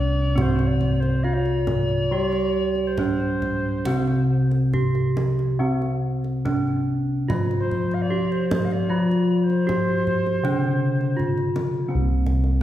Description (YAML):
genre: Javanese gamelan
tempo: 69-84 BPM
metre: 4/4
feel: straight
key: unclear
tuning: A4 = 441 Hz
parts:
  - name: gamelan-type bronze metallophone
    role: melody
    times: 0.0-12.6 s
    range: C4 to G4-40c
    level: -26 LUFS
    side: right 3 dB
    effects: none
  - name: mellow alto recorder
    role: second line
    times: 0.0-11.2 s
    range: C5 to F5+32c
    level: -28 LUFS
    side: left 1 dB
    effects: slapback echo
  - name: gamelan-type bronze metallophone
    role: accompaniment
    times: 0.0-11.9 s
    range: C3 to G3-40c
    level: -24 LUFS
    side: left 1 dB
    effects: none
  - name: gamelan-type bossed gongs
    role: bass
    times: 0.0-12.6 s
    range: C2 to G4-40c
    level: -26 LUFS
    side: equal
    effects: none
  - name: kendang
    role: percussion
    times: 0.4-12.5 s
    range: none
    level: -30 LUFS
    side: right 1 dB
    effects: none
room: wet scoring stage reverb, RT60 1.5 s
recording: heard from further back in the room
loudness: -20 LUFS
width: side -12 dB against mid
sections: 0.0-11.9 A section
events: none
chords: none